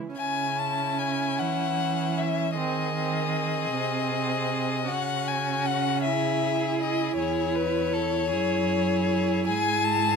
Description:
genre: classical, slow romantic movement for string quartet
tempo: 52 BPM (dotted quarters)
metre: 6/8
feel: rubato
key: C# minor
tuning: A4 = 441 Hz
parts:
  - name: clear viola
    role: accompaniment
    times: 0.0-10.2 s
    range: E3 to E4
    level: -30 LUFS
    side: right 6 dB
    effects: none
  - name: clear violin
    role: melody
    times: 0.2-10.2 s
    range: C#5 to A5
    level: -27 LUFS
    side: left 8 dB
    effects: none
  - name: clear violin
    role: second line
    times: 0.2-10.2 s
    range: E4 to B4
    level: -32 LUFS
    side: left 2 dB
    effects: none
  - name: rich cello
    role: bass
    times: 0.2-10.2 s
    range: E2 to E3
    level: -30 LUFS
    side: right 5 dB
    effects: none
room: light reverb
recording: close, detailed microphones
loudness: -24 LUFS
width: side -5 dB against mid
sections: 0.2-10.2 A section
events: none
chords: 0.2 C#m; 2.6 G#/D#; 4.9 C#m; 7.2 C#m/E; 9.5 E/G#

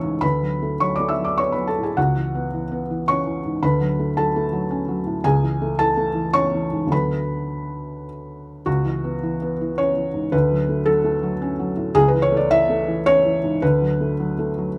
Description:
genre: neoclassical minimalist piano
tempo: 102-114 BPM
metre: 3/4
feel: rubato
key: B dorian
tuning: A4 = 440 Hz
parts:
  - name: felt-muted upright piano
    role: solo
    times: 0.0-14.8 s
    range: C#2 to E6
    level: -21 LUFS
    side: equal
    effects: none
room: light reverb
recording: none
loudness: -21 LUFS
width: mono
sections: 0.0-8.7 A section; 8.7-14.8 B section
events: none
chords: 0.2 Bm7/D; 2.0 C#m7; 3.6 Dmaj7; 5.2 Amaj7/C#; 6.9 Bm7/D; 8.7 C#m7; 10.3 Dmaj7; 12.0 Amaj7/C#; 13.6 Bm7/D

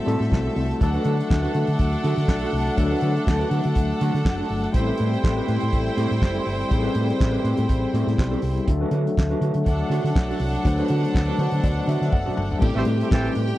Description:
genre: disco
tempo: 122 BPM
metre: 4/4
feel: swing 56% on 16ths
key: unclear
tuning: A4 = 440 Hz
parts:
  - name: clear studio string section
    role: second line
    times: 0.0-13.6 s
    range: C4 to G5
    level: -29 LUFS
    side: right 1 dB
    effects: none
  - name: overdriven tine electric piano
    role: accompaniment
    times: 0.0-13.6 s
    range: F#3 to A5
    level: -27 LUFS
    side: left 5 dB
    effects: medium tremolo
  - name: mellow French horn section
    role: sustained chords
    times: 0.0-13.6 s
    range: B2 to F#4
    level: -30 LUFS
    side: equal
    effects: none
  - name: mellow electric guitar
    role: accompaniment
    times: 0.1-13.5 s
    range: C4 to B4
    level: -31 LUFS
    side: right 6 dB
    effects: spring reverb
  - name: hollow-body short-scale fingered electric bass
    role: bass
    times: 0.1-13.5 s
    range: F#1 to D3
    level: -24 LUFS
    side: equal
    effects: none
  - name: warm soul drum kit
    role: drums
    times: 0.1-13.6 s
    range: crash cymbal, handclaps, hi-hat, kick drum, snare drum, toms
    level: -22 LUFS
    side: equal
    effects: none
  - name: warm horn section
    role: stabs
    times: 12.8-13.3 s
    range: E3 to C5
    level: -27 LUFS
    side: right 3 dB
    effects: none
room: little or no reverb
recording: dry, close 1970s-style studio recording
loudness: -20 LUFS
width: side -15 dB against mid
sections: 0.0-12.6 A section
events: tine electric piano fill 11.1-12.6; drum fill 12.1-12.6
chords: 0.0 Am7; 0.8 D; 4.7 Am7; 8.7 D; 12.6 Am7

